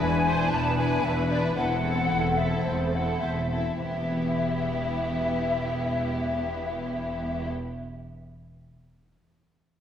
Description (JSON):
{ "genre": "classical, dramatic, fast romantic movement for symphony orchestra", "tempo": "100-118 BPM", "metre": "4/4", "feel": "rubato", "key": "E minor", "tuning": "A4 = 440 Hz", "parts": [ { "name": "rich studio violin section", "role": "melody", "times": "0.0-7.5 s", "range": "G4 to B4", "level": "-38 LUFS", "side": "left 2 dB", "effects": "none" }, { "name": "flute section", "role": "second line", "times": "0.0-7.5 s", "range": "C5 to A5", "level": "-29 LUFS", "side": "left 2 dB", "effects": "none" }, { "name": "warm studio violin section", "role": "second line", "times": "0.0-7.5 s", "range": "C4 to E4", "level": "-34 LUFS", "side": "left 2 dB", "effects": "none" }, { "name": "rich symphonic viola section", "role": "accompaniment", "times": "0.0-7.5 s", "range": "B3 to C5", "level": "-34 LUFS", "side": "right 2 dB", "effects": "none" }, { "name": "concert harp", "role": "arpeggios", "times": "0.0-7.8 s", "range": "E3 to E5", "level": "-31 LUFS", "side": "left 4 dB", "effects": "none" }, { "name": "rich symphonic cello section", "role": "bass", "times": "0.0-7.5 s", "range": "E2", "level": "-34 LUFS", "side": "right 1 dB", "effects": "none" }, { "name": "rich symphonic double bass section", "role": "bass", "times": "0.0-7.5 s", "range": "E1", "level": "-32 LUFS", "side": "right 1 dB", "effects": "none" } ], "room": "wet scoring stage reverb, RT60 1.7 s", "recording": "heard from further back in the room", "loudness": "-24 LUFS", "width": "side -9 dB against mid", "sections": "0.0-3.8 A section; 3.8-8.4 B section", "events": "slowing down 0.0-3.8", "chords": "0.0 E7; 1.6 Am/E; 3.8 Em", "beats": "0.01 0.52 1.04 | 1.56 2.10 2.64 3.21 | 3.80 4.37 4.94 5.51 | 6.08 6.66 7.23" }